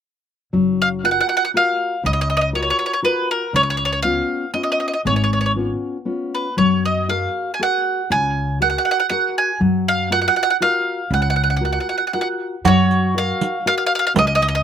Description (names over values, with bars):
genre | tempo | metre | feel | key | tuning
italian folk, Italian serenade | 120 BPM | 3/4 | swing 53% on 8ths, rubato | F# major | A4 = 444 Hz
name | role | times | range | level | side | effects
nylon-string guitar | accompaniment | 0.5-14.6 s | C#3 to E#5 | -22 LUFS | left 4 dB | none
upright bass | bass | 0.5-14.6 s | F#1 to F#2 | -23 LUFS | right 1 dB | none
bowl-back mandolin | melody | 0.8-14.6 s | A#4 to G#5 | -18 LUFS | right 2 dB | slapback echo
mandolin | second line | 12.7-14.6 s | F#4 | -24 LUFS | right 5 dB | slapback echo
riq | percussion | 12.7-14.5 s | none | -21 LUFS | right 5 dB | none
room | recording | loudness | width
little or no reverb | recorded outdoors, with no room sound | -16 LUFS | side -8 dB against mid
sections
0.5-12.6 A section; 12.6-14.6 A section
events
none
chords
0.5 F#maj7; 3.5 C#7; 6.6 F#add9; 9.6 F#maj7